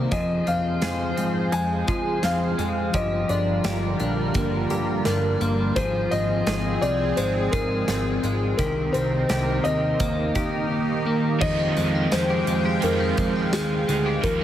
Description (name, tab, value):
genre	dream pop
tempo	85 BPM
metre	4/4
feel	straight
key	F dorian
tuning	A4 = 436 Hz
part	felt-muted upright piano	melody	0.0-14.4 s	Ab4 to Ab5	-27 LUFS	left 1 dB	tape echo
part	lush unison pad	sustained chords	0.0-14.4 s	C3 to D6	-28 LUFS	right 1 dB	chorus, phaser
part	clean electric guitar	arpeggios	0.0-14.4 s	Eb3 to Ab4	-27 LUFS	left 2 dB	analog chorus, tape echo
part	fat analog bass	bass	0.0-14.4 s	G1 to F3	-28 LUFS	equal	none
part	huge arena drum kit	drums	0.1-14.4 s	crash cymbal, hi-hat, kick drum, snare drum, tambourine	-30 LUFS	right 1 dB	none
part	crunchy overdriven guitar	accompaniment	11.4-14.4 s	Eb3 to G4	-29 LUFS	right 4 dB	tremolo, wide subtle chorus
room	moderate huge ambient reverb, RT60 5.4 s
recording	heavily compressed radio sound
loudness	-21 LUFS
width	side -11 dB against mid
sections	0.0-11.4 A section; 11.4-14.4 B section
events	none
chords	0.1 Fm; 2.9 Gm7; 5.8 Fm/Ab; 8.6 Cm7; 10.0 Eb; 11.4 Fm9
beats	| 0.12 0.82 1.53 2.23 | 2.94 3.65 4.35 5.06 | 5.76 6.47 7.18 7.88 | 8.59 9.29 10.00 10.71 | 11.41 12.12 12.82 13.53 | 14.23